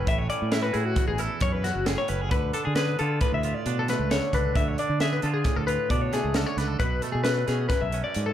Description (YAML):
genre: math rock and midwest emo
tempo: 134 BPM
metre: 5/4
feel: straight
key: unclear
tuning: A4 = 440 Hz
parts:
  - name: twangy electric guitar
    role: accompaniment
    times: 0.0-8.3 s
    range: E2 to B4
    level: -32 LUFS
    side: right 11 dB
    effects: none
  - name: twelve-string electric guitar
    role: arpeggios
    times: 0.0-8.3 s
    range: F#4 to E5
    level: -28 LUFS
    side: left 5 dB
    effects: spring reverb
  - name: growling fingered electric bass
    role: bass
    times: 0.0-8.3 s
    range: F#1 to D3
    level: -28 LUFS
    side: equal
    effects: overdrive
  - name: crisp fusion drum kit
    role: drums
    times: 0.1-8.3 s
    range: hi-hat, kick drum, snare drum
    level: -28 LUFS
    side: equal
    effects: none
room: light reverb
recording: dark, warm production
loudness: -23 LUFS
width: side -11 dB against mid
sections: 0.0-8.3 A section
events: none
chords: 0.0 A69; 2.3 Dm; 6.8 Bm9